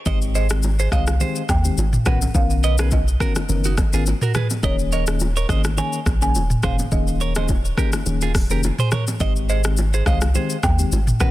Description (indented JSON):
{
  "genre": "afrobeats",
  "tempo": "105 BPM",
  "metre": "4/4",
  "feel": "swing 55% on 16ths",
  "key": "Ab major",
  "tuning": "A4 = 441 Hz",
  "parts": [
    { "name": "folk marimba with medium mallets", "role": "melody", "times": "0.1-11.3 s", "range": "Db5 to Ab5", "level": "-29 LUFS", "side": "right 3 dB", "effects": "digital delay" },
    { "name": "mellow FM electric piano", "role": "accompaniment", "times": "0.1-11.3 s", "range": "Eb3 to A#4", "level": "-27 LUFS", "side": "left 6 dB", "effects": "chorus" },
    { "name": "direct-recorded clean electric guitar", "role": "riff", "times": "0.1-11.3 s", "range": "D#4 to Eb5", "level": "-29 LUFS", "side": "right 7 dB", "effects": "digital delay" },
    { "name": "punchy sub bass", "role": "bass", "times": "0.1-11.3 s", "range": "Eb1 to Eb2", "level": "-20 LUFS", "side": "equal", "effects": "none" },
    { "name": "afro-pop drum kit", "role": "drums", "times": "0.1-11.3 s", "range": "hi-hat, kick drum, rim click, shaker, toms", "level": "-22 LUFS", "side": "equal", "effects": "soft clipping on snare" },
    { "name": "congas and bongos", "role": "percussion", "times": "0.1-11.3 s", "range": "none", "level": "-31 LUFS", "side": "right 2 dB", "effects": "none" }
  ],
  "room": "digital ambience",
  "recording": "dense, heavily limited modern master",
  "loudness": "-17 LUFS",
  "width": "side -16 dB against mid",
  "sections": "0.1-11.3 A section",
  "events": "none",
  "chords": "0.1 Abmaj7; 2.1 Bmaj9; 4.6 Eb7sus4; 9.2 Abmaj7"
}